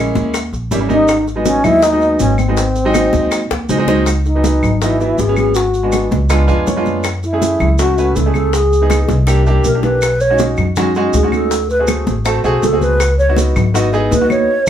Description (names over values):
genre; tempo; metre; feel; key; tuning
Afro-Cuban jazz; 161 BPM; 4/4; straight; C# minor; A4 = 439 Hz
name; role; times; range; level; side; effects
warm concert grand piano; accompaniment; 0.0-14.5 s; E3 to G#5; -18 LUFS; right 1 dB; none
upright bass; bass; 0.0-14.7 s; G#1 to F#2; -16 LUFS; equal; none
congas; percussion; 0.2-14.7 s; none; -21 LUFS; equal; none
maracas; percussion; 0.2-14.7 s; none; -28 LUFS; right 3 dB; none
bongos; percussion; 0.3-14.5 s; none; -25 LUFS; left 4 dB; none
claves; percussion; 0.3-14.5 s; none; -25 LUFS; left 3 dB; none
mellow wooden-headed alto flute; melody; 0.9-14.7 s; B#3 to C#5; -15 LUFS; equal; none
room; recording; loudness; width
wet studio ambience, RT60 0.4 s; band playing live in one room; -12 LUFS; side -10 dB against mid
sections
0.0-4.1 A section; 4.1-14.7 B section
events
drum fill 3.5-4.1, 8.9-10.0; alto flute solo 4.1-14.7; grand piano fill 6.3-7.0; band accent 14.5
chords
0.3 D#7b9; 1.1 G#m7; 2.6 G#7; 4.1 C#m11; 5.6 G#m7b5; 6.3 C#7b9; 7.0 F#m7; 8.5 C#m7; 9.3 C9; 10.0 B69; 11.5 D7#11; 13.0 C#m11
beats
0.34 0.71 | 1.09 1.46 1.83 2.20 | 2.58 2.95 3.32 3.69 | 4.07 4.44 4.81 5.18 | 5.55 5.93 6.30 6.67 | 7.04 7.42 7.79 8.16 | 8.54 8.91 9.28 9.65 | 10.03 10.40 10.77 11.14 | 11.52 11.89 12.26 12.63 | 13.00 13.38 13.75 14.12 | 14.49